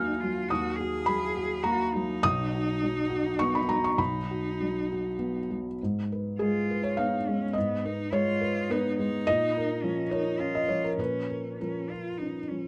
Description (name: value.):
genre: neoclassical piano and strings.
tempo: 103 BPM.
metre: 3/4.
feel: uneven beats, rubato.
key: unclear.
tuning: A4 = 440 Hz.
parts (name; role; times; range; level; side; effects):
rich cello; second line; 0.0-12.7 s; Cb4 to Ab4; -36 LUFS; equal; none.
felt-muted upright piano; accompaniment; 0.0-12.7 s; B1 to F6; -30 LUFS; equal; none.
room: light reverb.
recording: close, detailed microphones.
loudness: -29 LUFS.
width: mono.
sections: 0.0-5.8 A section; 5.8-12.7 B section.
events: none.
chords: 0.0 Ebm; 2.2 B; 5.8 Abm; 9.3 Bbm.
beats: | 0.49 1.06 1.63 | 2.23 2.80 3.39 | 3.98 4.59 5.18 | 5.79 6.38 6.97 | 7.55 8.12 8.70 | 9.27 9.82 10.39 | 10.98 11.59 12.19.